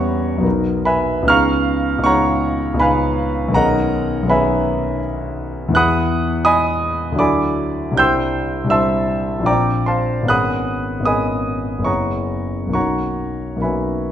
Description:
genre	classical, impressionist solo piano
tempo	66-85 BPM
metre	3/4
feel	rubato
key	B major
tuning	A4 = 440 Hz
part	warm concert grand piano	solo	0.0-14.1 s	F#1 to G6	-16 LUFS	equal	none
room	moderate recital hall reverb, RT60 1.6 s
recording	minimal, uncompressed stereo recording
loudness	-16 LUFS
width	side -10 dB against mid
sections	0.0-14.1 A section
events	none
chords	0.4 Bmaj7; 1.3 C#9; 3.6 B69; 5.8 Eadd9; 7.2 Dadd9; 8.0 Cadd9; 9.5 A#add9; 10.3 G#m11; 11.9 F#9sus4; 12.7 Bmaj9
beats	0.45 | 1.28 2.06 2.83 | 3.56 4.31 5.04 | 5.77 6.49 7.20 | 7.99 8.72 9.47 | 10.30 11.07 11.88 | 12.75 13.64

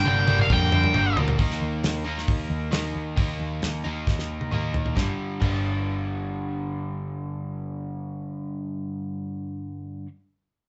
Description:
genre	classic rock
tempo	134 BPM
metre	4/4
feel	straight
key	G minor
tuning	A4 = 437 Hz
part	octave-fuzz lead guitar	melody	0.0-1.2 s	F5 to G5	-26 LUFS	equal	wah, distortion
part	overdriven electric guitar	riff	0.0-10.1 s	G2 to Eb4	-32 LUFS	equal	none
part	hollow-body short-scale picked electric bass	bass	0.0-10.0 s	G1 to F2	-31 LUFS	equal	none
part	damped 70s drum kit	drums	0.1-5.5 s	crash cymbal, hi-hat, kick drum, snare drum, toms	-28 LUFS	equal	none
room	moderate studio ambience, RT60 0.5 s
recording	band playing live in one room, nothing above 8.0 kHz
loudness	-26 LUFS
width	mono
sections	0.0-1.4 A section; 1.4-5.0 B section; 5.0-8.6 C section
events	drum fill 0.0-1.4, 4.1-5.0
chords	0.0 Gm; 1.4 Eb5; 5.0 G5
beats	0.06 0.50 0.94 | 1.39 1.83 2.28 2.72 | 3.17 3.62 4.07 4.52 | 4.97 5.42 5.87 6.32 | 6.77 7.22 7.67 8.12

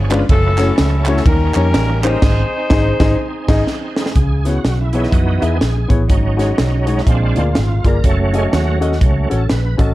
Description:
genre	uptempo gospel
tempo	124 BPM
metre	4/4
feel	swing 61% on 8ths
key	C# minor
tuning	A4 = 440 Hz
part	warm upright piano	accompaniment	0.0-9.9 s	G#2 to E5	-20 LUFS	left 3 dB	none
part	bright tonewheel organ	sustained chords	0.0-9.9 s	E3 to B4	-23 LUFS	right 3 dB	slow rotary speaker, chorus vibrato
part	vintage muted fingered electric bass	bass	0.0-9.9 s	F#1 to F#2	-16 LUFS	equal	none
part	crisp fusion drum kit	drums	0.1-9.9 s	crash cymbal, hi-hat, kick drum, ride cymbal, snare drum	-17 LUFS	equal	none
part	group handclap	percussion	0.1-2.1 s	none	-27 LUFS	right 4 dB	none
part	warm horn section	melody	0.3-3.6 s	C#4 to B#4	-21 LUFS	left 2 dB	slapback echo
room	light reverb, small room ambience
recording	dark, warm production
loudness	-13 LUFS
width	side -16 dB against mid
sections	0.0-4.2 A section; 4.2-9.9 B section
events	band accent 2.2-4.2; drum fill 3.7-4.2; tonewheel organ solo 4.2-9.9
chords	0.3 F#m7; 1.3 D#7; 2.2 G#; 4.2 C#m7; 6.1 G#7sus4; 7.1 A#7; 8.0 D#m7b5/F#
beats	| 0.29 0.77 1.26 1.74 | 2.22 2.71 3.19 3.67 | 4.16 4.64 5.13 5.62 | 6.10 6.59 7.07 7.56 | 8.04 8.53 9.01 9.50

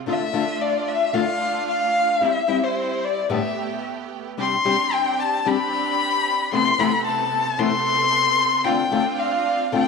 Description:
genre	tango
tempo	112 BPM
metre	4/4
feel	rubato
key	C major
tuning	A4 = 440 Hz
part	clear symphonic string section	stabs	0.0-9.9 s	C3 to A4	-28 LUFS	right 10 dB	none
part	warm violin	second line	0.1-9.9 s	C5 to C6	-20 LUFS	left 4 dB	none
part	nylon-string guitar	accompaniment	0.1-9.8 s	G2 to G4	-25 LUFS	left 7 dB	none
room	wet echo chamber reverb, RT60 1.6 s, small room ambience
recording	1960s-style stereo with parts hard left and right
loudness	-19 LUFS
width	side -4 dB against mid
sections	0.0-9.9 A section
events	violin solo 0.0-9.9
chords	0.1 Dm; 2.2 C/G; 3.3 Gadd9; 4.4 Csus2; 6.5 Amadd9/C; 8.7 Dm7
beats	| 0.08 0.61 1.15 1.69 | 2.22 2.76 3.30 3.84 | 4.38 4.92 5.46 6.00 | 6.53 7.07 7.60 8.13 | 8.66 9.20 9.74

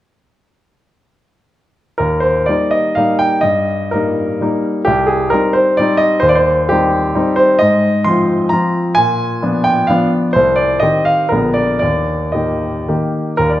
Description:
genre	classical, romantic triple-time dance for piano with dotted rhythms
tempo	106-139 BPM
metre	3/4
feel	rubato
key	Eb major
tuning	A4 = 440 Hz
part	warm baby grand piano	solo	2.0-13.6 s	Bb1 to C6	-12 LUFS	equal	none
room	moderate recital hall reverb, RT60 1.5 s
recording	none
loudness	-12 LUFS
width	side -14 dB against mid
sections	2.0-13.4 A section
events	none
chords	2.0 Eb; 3.4 Eb/G; 4.8 Cm; 6.2 Cm/Eb; 7.6 Fm7/Ab; 9.0 Bb7b9; 10.3 Cm; 11.3 Bb7b9; 11.8 Eb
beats	| 2.00 2.48 2.97 | 3.43 3.92 4.40 | 4.85 5.31 5.79 | 6.23 6.69 7.16 | 7.60 8.06 8.52 | 8.96 9.42 9.89 | 10.34 10.81 11.31 | 11.81 12.35 12.89 | 13.40

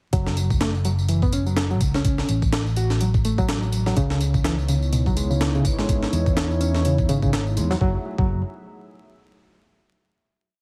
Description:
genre	breakbeat, breaks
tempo	125 BPM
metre	4/4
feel	swing 57% on 16ths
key	F# minor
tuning	A4 = 441 Hz
part	barky reed electric piano	riff	0.1-8.4 s	B2 to F#4	-28 LUFS	equal	overdrive, fast tremolo, vintage 12-bit sampler grit, low-pass filter, delay
part	fingered electric bass	bass	0.1-8.4 s	F#1 to E2	-26 LUFS	equal	tube saturation
part	breakbeat sampler-style drum kit	drums	0.1-8.3 s	hi-hat, kick drum, snare drum	-26 LUFS	equal	studio reverb
part	tambourine	drums	0.1-7.8 s	none	-40 LUFS	equal	studio reverb
part	dark analog pad	sustained chords	4.0-8.0 s	A3 to E5	-32 LUFS	equal	chorus, vintage 12-bit sampler grit, sidechain pumping
room	light reverb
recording	heavily compressed radio sound, vinyl crackle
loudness	-22 LUFS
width	mono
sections	0.1-7.8 groove; 7.8-9.7 final chord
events	none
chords	0.1 F#m; 4.0 C#m9; 7.8 F#m9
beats	| 0.13 0.61 1.09 1.57 | 2.05 2.53 3.01 3.49 | 3.97 4.45 4.93 5.41 | 5.89 6.37 6.85 7.33 | 7.81 8.29

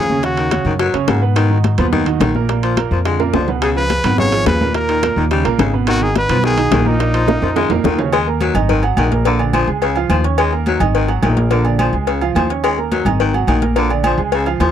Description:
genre	latin, salsa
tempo	213 BPM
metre	4/4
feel	straight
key	unclear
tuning	A4 = 438 Hz
part	bright trumpet	melody	0.0-0.8, 3.6-7.9 s	Eb4 to Db5	-18 LUFS	left 1 dB	none
part	raspy baritone saxophone	second line	0.0-14.7 s	Db3 to Ab3	-20 LUFS	left 6 dB	none
part	clear grand piano	accompaniment	0.0-14.7 s	Bb2 to Db6	-20 LUFS	right 11 dB	none
part	upright bass	bass	0.0-14.7 s	Ab1 to Ab2	-18 LUFS	left 1 dB	none
part	congas	percussion	0.1-14.7 s	none	-23 LUFS	left 2 dB	none
part	bongos and cowbell	percussion	0.2-14.7 s	none	-22 LUFS	left 13 dB	none
part	timbales and agogo bells	percussion	0.2-14.7 s	none	-23 LUFS	right 6 dB	none
room	light reverb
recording	dry, close 1970s-style studio recording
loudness	-13 LUFS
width	side -9 dB against mid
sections	0.0-8.1 A section; 8.1-14.7 B section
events	drum fill 3.2-3.6, 7.3-8.1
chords	0.2 Ebm7; 1.4 Abm7; 2.5 Bb; 3.6 Db9; 4.7 Eb7(no3); 5.9 Abm7; 7.0 Bbsus4; 8.1 Ab5; 9.3 Bb7; 9.8 Db; 10.4 Ebm7; 10.9 Ab5; 11.5 Bb7; 12.1 Db; 12.6 Ebm7; 13.2 Ab5; 13.8 Bb7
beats	| 0.23 0.52 0.80 1.08 | 1.36 1.64 1.93 2.21 | 2.49 2.77 3.05 3.34 | 3.62 3.90 4.18 4.46 | 4.75 5.03 5.31 5.59 | 5.87 6.16 6.44 6.72 | 7.00 7.28 7.57 7.85 | 8.13 8.41 8.69 8.98 | 9.26 9.54 9.82 10.10 | 10.38 10.67 10.95 11.23 | 11.51 11.79 12.07 12.36 | 12.64 12.92 13.20 13.48 | 13.76 14.04 14.33 14.61

